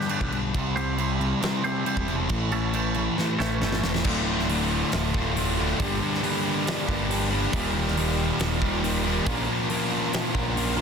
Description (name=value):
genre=quiet-loud alternative rock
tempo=138 BPM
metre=4/4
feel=straight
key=D phrygian from 4.1 s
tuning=A4 = 444 Hz
part: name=twangy electric guitar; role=arpeggios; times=0.0-3.9 s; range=G3 to C5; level=-31 LUFS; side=right 3 dB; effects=none
part: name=thick fuzz guitar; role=riff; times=0.0-10.8 s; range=D2 to Bb4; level=-28 LUFS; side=left 10 dB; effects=distortion
part: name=huge arena drum kit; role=drums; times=0.0-10.7 s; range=crash cymbal, hi-hat, kick drum, snare drum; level=-30 LUFS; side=equal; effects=soft clipping on snare
part: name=growling picked electric bass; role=bass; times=0.2-10.8 s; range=D1 to C2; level=-29 LUFS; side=right 1 dB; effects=overdrive
part: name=fuzz guitar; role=riff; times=0.5-10.8 s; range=D2 to Bb4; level=-29 LUFS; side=right 15 dB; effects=distortion
part: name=tight distorted guitar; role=riff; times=4.0-10.8 s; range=D2 to Bb3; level=-31 LUFS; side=right 1 dB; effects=distortion
room=light reverb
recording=dense, heavily limited modern master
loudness=-23 LUFS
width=side -6 dB against mid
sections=0.0-4.1 A section; 4.1-10.8 B section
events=drum fill 3.2-4.1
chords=0.0 G; 0.5 C; 2.3 A; 4.1 Dm; 5.8 Gm; 7.5 Eb; 9.3 Bbm